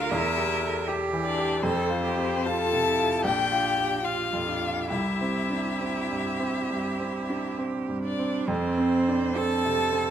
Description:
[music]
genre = classical, slow romantic movement for piano quartet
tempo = 65-81 BPM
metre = 4/4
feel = rubato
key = F major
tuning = A4 = 440 Hz
[part]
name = rich violin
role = melody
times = 0.0-10.1 s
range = C5 to A5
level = -30 LUFS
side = left 7 dB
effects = none
[part]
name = rich cello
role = second line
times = 0.0-10.1 s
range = C4 to Bb4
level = -30 LUFS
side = right 6 dB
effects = none
[part]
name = rich violin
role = second line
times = 0.0-7.5 s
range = C4 to A4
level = -32 LUFS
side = left 3 dB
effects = none
[part]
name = clear baby grand piano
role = accompaniment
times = 0.0-10.1 s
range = Bb1 to A4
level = -28 LUFS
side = right 1 dB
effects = none
[sound]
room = moderate recital hall reverb, RT60 1.6 s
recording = close, detailed microphones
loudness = -24 LUFS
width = side -9 dB against mid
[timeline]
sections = 0.0-8.5 A section; 8.5-10.1 A section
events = none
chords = 0.1 Em7b5; 1.6 F; 3.2 Bb; 4.9 C; 8.5 F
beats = 0.12 0.89 | 1.64 2.46 3.24 4.05 | 4.91 5.81 6.71 7.59 | 8.48 9.38

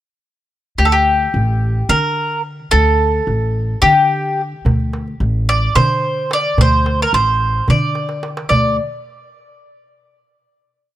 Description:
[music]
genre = Turkish makam ensemble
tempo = 218 BPM (eighths)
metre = 7/8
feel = straight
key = D makam ussak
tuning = A4 = 440 Hz
[part]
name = bowl-back mandolin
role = melody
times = 0.8-8.8 s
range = G4 to D5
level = -15 LUFS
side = equal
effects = none
[part]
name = upright bass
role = bass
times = 0.8-8.8 s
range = A1 to D3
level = -18 LUFS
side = equal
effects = none
[part]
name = darbuka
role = percussion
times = 4.7-8.8 s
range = none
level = -19 LUFS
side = right 1 dB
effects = none
[sound]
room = small room ambience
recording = dry, close 1970s-style studio recording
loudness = -13 LUFS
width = side -13 dB against mid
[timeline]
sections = 0.8-8.5 A section; 8.5-10.4 final note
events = drum fill 8.0-8.5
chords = none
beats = | 0.79 1.07 1.34 1.62 1.90 2.17 2.45 | 2.73 3.00 3.28 3.55 3.83 4.11 4.38 | 4.66 4.93 5.21 5.48 5.76 6.03 6.31 | 6.58 6.86 7.13 7.41 7.69 7.96 8.24 | 8.51

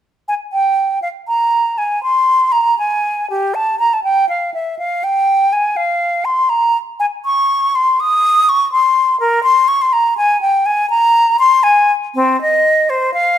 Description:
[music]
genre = classical, baroque-style fantasia for unaccompanied flute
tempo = 81 BPM (dotted quarters)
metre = 12/8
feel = rubato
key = unclear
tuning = A4 = 439 Hz
[part]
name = silver concert flute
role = solo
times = 0.3-13.4 s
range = C4 to Eb6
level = -12 LUFS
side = equal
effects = none
[sound]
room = light reverb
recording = minimal, uncompressed stereo recording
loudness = -12 LUFS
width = side -10 dB against mid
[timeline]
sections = 0.3-13.4 A section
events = none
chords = none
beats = | 0.29 1.03 1.79 2.53 | 3.30 4.06 4.80 5.54 | 6.26 7.00 7.74 8.48 | 9.20 9.93 10.66 11.38 | 12.15 12.89

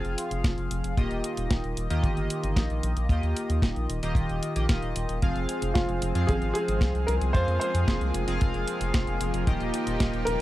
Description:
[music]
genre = italo disco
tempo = 113 BPM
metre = 4/4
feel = straight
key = F minor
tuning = A4 = 442 Hz
[part]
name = chorused polysynth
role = stabs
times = 0.0-10.4 s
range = Eb3 to F5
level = -31 LUFS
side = equal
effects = cassette tape, tape echo
[part]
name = round analog bass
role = bass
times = 0.0-10.4 s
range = Eb1 to F2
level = -28 LUFS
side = equal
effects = none
[part]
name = clean 12-bit digital drum machine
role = drums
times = 0.0-10.4 s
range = hi-hat, snare drum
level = -33 LUFS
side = equal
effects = overdrive
[part]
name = kick drum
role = drums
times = 0.4-10.1 s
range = none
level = -24 LUFS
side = equal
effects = none
[part]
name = lush unison pad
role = sustained chords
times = 5.2-10.4 s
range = F3 to Ab4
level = -33 LUFS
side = equal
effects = chorus
[part]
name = warm grand piano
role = melody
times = 5.7-10.4 s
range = F4 to C5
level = -29 LUFS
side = equal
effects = vintage 12-bit sampler grit, tape echo
[sound]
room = little or no reverb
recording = dry, close 1970s-style studio recording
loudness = -24 LUFS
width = side -15 dB against mid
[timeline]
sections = 0.0-10.4 A section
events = none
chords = 0.0 Fm; 1.0 Ebadd9; 5.2 Fm; 9.5 Ebadd9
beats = 0.44 | 0.97 1.51 2.04 2.57 | 3.10 3.63 4.16 4.69 | 5.22 5.75 6.29 6.82 | 7.35 7.88 8.41 8.94 | 9.47 10.00

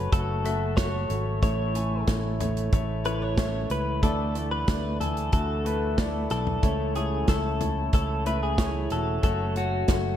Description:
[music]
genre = piano-driven pop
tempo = 92 BPM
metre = 4/4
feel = straight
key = A major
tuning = A4 = 439 Hz
[part]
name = direct-recorded clean electric guitar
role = melody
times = 0.0-10.2 s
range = F#4 to C#5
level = -31 LUFS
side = left 2 dB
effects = wide subtle chorus, analog delay
[part]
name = clear concert grand piano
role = accompaniment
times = 0.0-10.2 s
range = A2 to G#5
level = -32 LUFS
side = left 3 dB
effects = none
[part]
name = tonewheel organ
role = sustained chords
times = 0.0-10.2 s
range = C#3 to F#4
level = -38 LUFS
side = right 2 dB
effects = none
[part]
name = fingerpicked steel-string acoustic guitar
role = riff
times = 0.0-10.2 s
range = A2 to A4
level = -39 LUFS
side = right 5 dB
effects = ensemble chorus
[part]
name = fingered electric bass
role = bass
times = 0.0-10.2 s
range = E1 to D2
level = -29 LUFS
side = equal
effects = none
[part]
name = natural country drum kit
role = drums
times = 0.1-10.0 s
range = hi-hat, kick drum, snare drum, toms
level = -26 LUFS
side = equal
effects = none
[sound]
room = moderate plate reverb, RT60 1.6 s, studio reverb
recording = dreamy mix soaked in reverb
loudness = -24 LUFS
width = side -10 dB against mid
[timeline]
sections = 0.0-10.2 A section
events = none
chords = 0.0 F#m; 1.4 A; 4.0 Dsus2; 6.6 A/C#; 9.2 F#m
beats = 0.12 0.77 | 1.42 2.07 2.72 3.38 | 4.03 4.68 5.33 5.98 | 6.63 7.28 7.93 8.58 | 9.23 9.88

